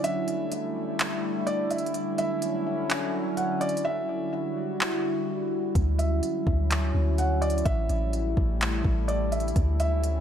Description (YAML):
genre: hip hop, atmospheric cloud-rap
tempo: 126 BPM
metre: 4/4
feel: half-time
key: D major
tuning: A4 = 441 Hz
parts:
  - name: felt-muted upright piano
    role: melody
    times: 0.0-10.2 s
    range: D5 to F#5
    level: -31 LUFS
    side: right 1 dB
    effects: ping-pong delay
  - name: warbly tape-like pad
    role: sustained chords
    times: 0.0-10.2 s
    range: D3 to F#4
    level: -29 LUFS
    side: equal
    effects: chorus, built-in reverb, sidechain pumping
  - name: smooth R&B drum kit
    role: drums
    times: 0.0-10.1 s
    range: handclaps, hi-hat, kick drum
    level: -28 LUFS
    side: equal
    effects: none
  - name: soft 808-style bass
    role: bass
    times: 5.8-10.2 s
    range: A1 to D2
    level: -26 LUFS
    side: equal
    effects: none
room: light reverb, digital ambience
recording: none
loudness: -24 LUFS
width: side -9 dB against mid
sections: 0.0-10.2 A section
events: break 0.0-5.8; hi-hats muted 3.8-5.8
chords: 0.0 A7sus4; 1.9 Dmaj9; 3.8 Em9; 5.8 Dmaj9; 7.7 A7sus4; 9.6 Dmaj9